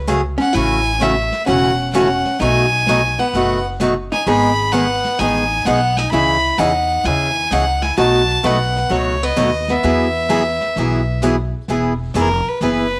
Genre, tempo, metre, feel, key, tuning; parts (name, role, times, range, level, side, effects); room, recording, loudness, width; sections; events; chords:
country, western swing; 129 BPM; 4/4; swing 68% on 8ths; E major; A4 = 439 Hz
upright bass; bass; 0.0-13.0 s; E1 to E2; -25 LUFS; equal
picked acoustic archtop guitar; accompaniment; 0.1-12.9 s; B2 to G#4; -21 LUFS; equal
vintage brush drum kit; drums; 0.1-13.0 s; brushed snare drum, hi-hat, snare drum; -32 LUFS; equal
clear fiddle; melody; 0.4-13.0 s; A#4 to B5; -21 LUFS; equal; slapback echo
archtop guitar, miked and amplified; second line; 0.4-11.2 s; A3 to G#4; -25 LUFS; equal
light reverb, studio reverb; -17 LUFS; mono
0.0-11.7 A section; 11.7-13.0 B section
fiddle solo 11.7-13.0
0.0 F#madd9; 0.5 A6; 2.4 B7; 4.3 G#m; 6.1 C#madd9; 8.0 B7; 9.8 Eadd9; 11.7 E